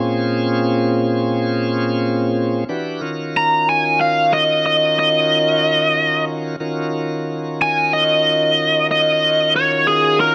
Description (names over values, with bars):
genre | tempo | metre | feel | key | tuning
blues | 61 BPM (dotted quarters) | 12/8 | straight | unclear | A4 = 437 Hz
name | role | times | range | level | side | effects
bright tonewheel organ | sustained chords | 0.0-10.3 s | Bb2 to Cb5 | -22 LUFS | equal | slow rotary speaker, overdrive, plate reverb
biting lead guitar | melody | 3.4-10.3 s | Ab4 to Bb5 | -16 LUFS | equal | overdrive, plate reverb
room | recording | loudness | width
moderate studio reverb, RT60 0.6 s | dark, warm production | -17 LUFS | mono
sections
0.0-10.3 A section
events
none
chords
0.0 Bbm9; 2.7 Ebm9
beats
0.72 1.70 | 2.68 3.66 4.64 5.61 | 6.59 7.57 8.55 9.52